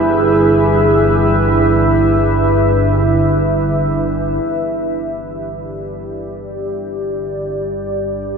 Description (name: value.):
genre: dark ambient drone.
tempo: free time.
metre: none.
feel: none.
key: unclear.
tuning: A4 = 440 Hz.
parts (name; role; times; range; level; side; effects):
mellow horn-like synth lead; melody; 0.0-2.1 s; G#4; -20 LUFS; right 1 dB; lush chorus, ping-pong delay.
deep dark ambient pad; sustained chords; 0.0-8.4 s; E4 to G5; -16 LUFS; right 1 dB; chorus, built-in reverb.
bronze singing bowl; arpeggios; 0.0-2.1 s; none; barely audible; none; none.
organ-like drone; drone; 0.0-8.4 s; G1 to G2; -18 LUFS; equal; ensemble chorus, built-in reverb.
room: wet huge ambient reverb, RT60 7.2 s.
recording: none.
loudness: -13 LUFS.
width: side -6 dB against mid.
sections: 0.0-4.5 A section; 4.5-8.4 A section.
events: fade-in on synth drone 4.5-8.4.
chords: 0.0 E; 4.5 G5.